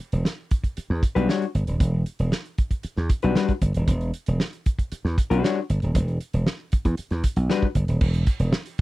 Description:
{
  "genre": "funk",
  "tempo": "116 BPM",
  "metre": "4/4",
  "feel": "straight",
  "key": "E dorian",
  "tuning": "A4 = 441 Hz",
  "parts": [
    { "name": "slap bass", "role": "bass", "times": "0.1-8.5 s", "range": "D#1 to E2", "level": "-22 LUFS", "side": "right 1 dB", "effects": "none" },
    { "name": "warm soul drum kit", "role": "drums", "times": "0.1-8.8 s", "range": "crash cymbal, hi-hat, kick drum, snare drum", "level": "-23 LUFS", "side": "right 1 dB", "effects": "none" },
    { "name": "vintage hollow-body jazz guitar", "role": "accompaniment", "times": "1.2-7.7 s", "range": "G3 to C#5", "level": "-22 LUFS", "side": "left 6 dB", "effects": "none" }
  ],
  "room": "little or no reverb",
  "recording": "dry, close 1970s-style studio recording",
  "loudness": "-21 LUFS",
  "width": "side -18 dB against mid",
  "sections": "0.0-8.0 A section",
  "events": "none",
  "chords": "0.0 Em9; 8.0 N.C."
}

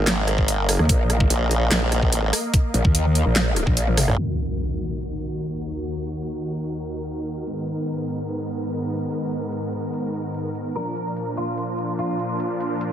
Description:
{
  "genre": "heavy wobble dubstep",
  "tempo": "146 BPM",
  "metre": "4/4",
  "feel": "half-time",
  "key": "Eb harmonic minor",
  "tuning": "A4 = 439 Hz",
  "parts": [
    { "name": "supersaw chords", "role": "sustained chords", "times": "0.0-12.9 s", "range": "Eb2 to F5", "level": "-27 LUFS", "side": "equal", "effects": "sidechain pumping, low-pass filter" },
    { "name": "formant-sweep wobble bass", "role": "bass", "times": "0.0-4.2 s", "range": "Ab1 to Bb1", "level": "-21 LUFS", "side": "equal", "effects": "chorus, overdrive" },
    { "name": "dubstep drum kit", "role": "drums", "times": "0.1-12.9 s", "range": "crash cymbal, handclaps, hi-hat, rim click, snare drum, toms", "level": "-23 LUFS", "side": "right 1 dB", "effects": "none" },
    { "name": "electronic kick drum", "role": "drums", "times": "0.4-3.7 s", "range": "none", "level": "-19 LUFS", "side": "equal", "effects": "none" },
    { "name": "growl bass", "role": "bass", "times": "0.8-4.1 s", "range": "Bb1 to Eb2", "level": "-20 LUFS", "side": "equal", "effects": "distortion, chorus, overdrive" },
    { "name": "impact", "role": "sound effects", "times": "4.2-5.8 s", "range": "none", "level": "-28 LUFS", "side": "equal", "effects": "none" },
    { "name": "clean electric guitar", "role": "melody", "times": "10.8-12.9 s", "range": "F4 to Bb4", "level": "-28 LUFS", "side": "equal", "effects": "ensemble chorus, ping-pong delay" }
  ],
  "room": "light reverb",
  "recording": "low-pass filter",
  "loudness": "-21 LUFS",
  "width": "side -10 dB against mid",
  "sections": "0.0-4.2 A section; 4.2-12.9 B section",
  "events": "drop 0.0-4.2; drum fill 3.9-4.2; impact 4.2-5.8; filter sweep on supersaw synth 4.2-12.9",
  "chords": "0.0 Bbsus4; 4.2 Ebm; 7.5 Abmadd9; 10.8 Bb"
}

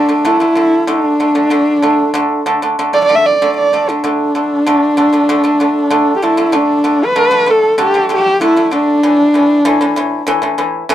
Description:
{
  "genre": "mongolian traditional",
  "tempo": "96 BPM",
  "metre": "4/4",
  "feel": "straight",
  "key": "D zhi mode",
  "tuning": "A4 = 440 Hz",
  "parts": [
    { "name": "warm horsehead fiddle", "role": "melody", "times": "0.0-10.6 s", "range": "D4 to E5", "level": "-12 LUFS", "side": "equal", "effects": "none" },
    { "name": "pipa", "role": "arpeggios", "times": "0.0-10.9 s", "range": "A2 to A3", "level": "-15 LUFS", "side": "right 1 dB", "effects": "none" }
  ],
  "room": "light reverb",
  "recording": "dry, close 1970s-style studio recording",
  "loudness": "-10 LUFS",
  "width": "side -12 dB against mid",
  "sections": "0.0-6.5 A section; 6.5-10.9 B section",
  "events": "none",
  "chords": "0.0 D5; 9.0 A5"
}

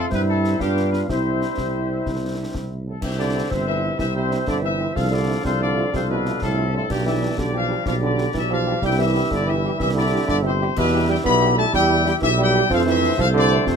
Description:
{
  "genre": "military-style march for wind band",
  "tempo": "124 BPM (dotted quarters)",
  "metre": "6/8",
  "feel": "straight",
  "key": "C major",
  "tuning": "A4 = 435 Hz",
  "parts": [
    { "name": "mellow trumpet section", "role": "melody", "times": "0.0-13.8 s", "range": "G4 to B5", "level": "-24 LUFS", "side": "left 5 dB", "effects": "none" },
    { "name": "warm euphonium", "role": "second line", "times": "0.0-13.8 s", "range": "G2 to F4", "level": "-25 LUFS", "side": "right 5 dB", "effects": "none" },
    { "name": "warm woodwind section", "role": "second line", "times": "0.0-13.8 s", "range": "G4 to F5", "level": "-29 LUFS", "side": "left 3 dB", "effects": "none" },
    { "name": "clear French horn section", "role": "accompaniment", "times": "0.0-13.6 s", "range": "G3 to C5", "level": "-29 LUFS", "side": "left 2 dB", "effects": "none" },
    { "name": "mellow tuba", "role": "bass", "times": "0.0-13.8 s", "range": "G1 to G2", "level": "-23 LUFS", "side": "right 2 dB", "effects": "none" },
    { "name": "concert snare drum, concert bass drum and clash cymbals", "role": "drums", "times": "0.1-13.8 s", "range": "none", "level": "-31 LUFS", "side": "left 1 dB", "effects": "none" },
    { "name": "clear trombone section", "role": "sustained chords", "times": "3.0-13.8 s", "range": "F3 to E4", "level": "-30 LUFS", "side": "equal", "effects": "none" }
  ],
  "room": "light reverb",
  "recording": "close, detailed microphones",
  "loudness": "-18 LUFS",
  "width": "side -6 dB against mid",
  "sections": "0.0-3.0 A section; 3.0-13.8 B section",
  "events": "none",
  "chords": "0.1 C/G; 0.6 G7; 1.1 C; 5.0 Dm7/C; 6.9 G7/B; 8.8 C; 10.8 Em; 12.7 F"
}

